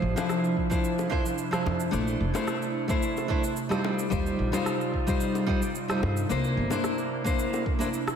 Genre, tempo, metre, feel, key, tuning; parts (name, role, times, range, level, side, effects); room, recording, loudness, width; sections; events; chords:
sunset chillout; 110 BPM; 4/4; swing 53% on 16ths; A4 = 441 Hz
nylon-string guitar; accompaniment; 0.0-7.9 s; F3 to C5; -28 LUFS; left 1 dB; auto-pan, analog delay
airy breathy pad; sustained chords; 0.0-8.2 s; C3 to F4; -32 LUFS; right 1 dB; chorus
upright bass; bass; 0.0-6.7 s; F1 to G2; -29 LUFS; equal
electronic cabasa and rim click; drums; 0.2-8.2 s; -36 LUFS; right 1 dB; studio reverb
bongos; percussion; 0.2-7.6 s; -39 LUFS; left 5 dB
electronic kick drum; drums; 0.6-7.8 s; -29 LUFS; equal; studio reverb
wet lush hall reverb, RT60 1.8 s, studio reverb; dreamy mix soaked in reverb; -25 LUFS; side -7 dB against mid
0.0-8.2 A section
0.0 Dm9; 1.9 Bbmaj9#11 (rootless); 3.8 Eb69; 6.3 C9